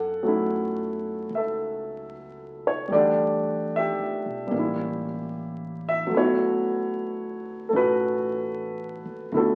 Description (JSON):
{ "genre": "jazz ballad", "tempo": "75 BPM", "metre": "4/4", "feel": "swing 66% on 8ths", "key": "D major", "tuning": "A4 = 440 Hz", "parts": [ { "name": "warm grand piano", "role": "accompaniment", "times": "0.0-9.6 s", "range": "D3 to F#5", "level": "-26 LUFS", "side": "equal", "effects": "none" }, { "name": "upright bass", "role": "bass", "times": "0.0-9.6 s", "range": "A1 to F#2", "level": "-41 LUFS", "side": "equal", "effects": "none" } ], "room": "wet studio reverb, RT60 0.9 s", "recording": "very old 78 rpm record, vinyl crackle", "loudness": "-26 LUFS", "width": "mono", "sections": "0.0-9.6 A section", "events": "none", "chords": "0.0 F#m7; 2.9 Em11; 4.5 A7b9; 6.1 D6" }